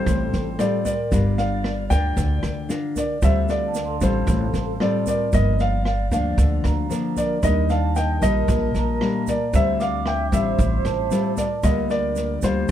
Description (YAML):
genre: bossa nova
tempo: 114 BPM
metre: 4/4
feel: straight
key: D phrygian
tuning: A4 = 442 Hz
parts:
  - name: dark concert grand piano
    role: melody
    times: 0.0-12.7 s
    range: C5 to G5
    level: -26 LUFS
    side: equal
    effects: plate reverb
  - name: breathy mellow small flute group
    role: second line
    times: 0.0-12.7 s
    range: G4 to E5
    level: -30 LUFS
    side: right 1 dB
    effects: none
  - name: nylon-string guitar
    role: accompaniment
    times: 0.0-12.7 s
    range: G2 to Bb4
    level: -25 LUFS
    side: left 3 dB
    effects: none
  - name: vibraphone with medium mallets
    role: accompaniment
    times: 0.0-12.7 s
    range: F5 to D6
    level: -34 LUFS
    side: right 8 dB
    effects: none
  - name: upright bass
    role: bass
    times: 0.0-12.7 s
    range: G1 to Eb2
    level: -22 LUFS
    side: right 1 dB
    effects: none
  - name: open jazz drum kit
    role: drums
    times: 0.1-12.7 s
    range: kick drum, rim click, snare drum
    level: -28 LUFS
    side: equal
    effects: none
  - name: egg shaker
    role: percussion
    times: 0.1-12.7 s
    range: none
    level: -40 LUFS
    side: right 9 dB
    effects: none
room: light reverb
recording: dark, warm production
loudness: -19 LUFS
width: side -10 dB against mid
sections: 0.0-12.7 A section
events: none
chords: 0.0 Dm7; 1.1 Gm7; 3.2 Dm7; 5.3 Gm7; 7.4 Ebmaj7; 9.5 Dm11; 11.6 Gm7/D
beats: 0.07 0.59 | 1.12 1.65 2.17 2.70 | 3.23 3.75 4.28 4.80 | 5.33 5.86 6.38 6.91 | 7.43 7.96 8.48 9.01 | 9.54 10.06 10.59 11.11 | 11.64 12.16 12.69